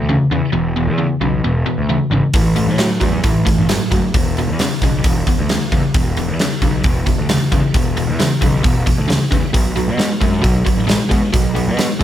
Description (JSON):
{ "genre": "blues rock power trio and southern rock", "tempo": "133 BPM", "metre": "4/4", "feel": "straight", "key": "E mixolydian", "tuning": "A4 = 439 Hz", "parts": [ { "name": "biting overdriven guitar", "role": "riff", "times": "0.0-12.0 s", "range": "E2 to G#3", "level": "-17 LUFS", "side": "left 1 dB", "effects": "none" }, { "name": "fuzz picked electric bass", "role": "bass", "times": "0.0-12.0 s", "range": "E1 to B2", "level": "-20 LUFS", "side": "equal", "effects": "overdrive" }, { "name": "huge arena drum kit", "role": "drums", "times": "2.3-12.0 s", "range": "hi-hat, kick drum, snare drum", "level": "-17 LUFS", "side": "equal", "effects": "none" } ], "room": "light reverb", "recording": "none", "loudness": "-14 LUFS", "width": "side -11 dB against mid", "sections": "0.0-12.0 A section", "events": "none", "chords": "0.0 E7(no3); 2.3 A5; 4.1 E5; 9.5 B5" }